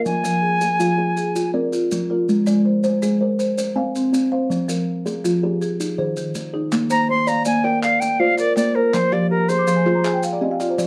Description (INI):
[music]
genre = southern african traditional, mbira-style interlocking cycle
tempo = 108 BPM (dotted quarters)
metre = 12/8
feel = straight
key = Bb mixolydian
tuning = A4 = 440 Hz
[part]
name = bright silver concert flute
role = melody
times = 0.0-1.5, 6.9-10.2 s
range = Bb4 to C6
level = -22 LUFS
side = equal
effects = none
[part]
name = kalimba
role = arpeggios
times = 0.0-10.9 s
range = Eb3 to Ab5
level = -24 LUFS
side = equal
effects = none
[part]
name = marimba with medium mallets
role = arpeggios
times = 0.0-10.9 s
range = Eb3 to D6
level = -24 LUFS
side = equal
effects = tape echo
[part]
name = maracas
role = percussion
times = 0.1-10.9 s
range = none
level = -37 LUFS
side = equal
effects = none
[part]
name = group handclap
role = percussion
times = 6.7-10.9 s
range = none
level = -35 LUFS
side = equal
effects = none
[sound]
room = moderate studio reverb, RT60 0.5 s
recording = dark, warm production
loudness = -20 LUFS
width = mono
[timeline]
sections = 0.0-6.7 A section; 6.7-10.9 B section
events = marimba fill 9.2-10.9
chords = 0.1 Fm; 2.3 Ab; 3.4 Fmadd11; 4.5 Fm; 5.6 Eb; 6.7 Bb; 8.9 Fm